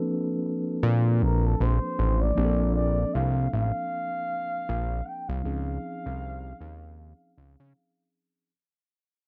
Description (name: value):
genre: R&B, neo-soul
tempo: 78 BPM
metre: 4/4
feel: swing 58% on 16ths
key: Bb major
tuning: A4 = 440 Hz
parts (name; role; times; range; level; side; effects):
- mellow tine electric piano; accompaniment; 0.0-8.5 s; F3 to B4; -34 LUFS; equal; none
- fat analog bass; bass; 0.8-7.7 s; A1 to Db3; -27 LUFS; equal; none
- trumpet with bucket mute; melody; 1.2-8.1 s; A4 to G5; -34 LUFS; equal; none
room: light reverb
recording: dark, warm production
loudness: -27 LUFS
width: mono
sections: 0.0-2.4 A section; 2.4-8.5 B section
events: fade-out 2.4-8.5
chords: 0.0 Bbmaj9; 5.4 Dbmaj9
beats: 0.04 0.81 1.58 | 2.35 3.12 3.89 4.66 | 5.43 6.20 6.97 7.74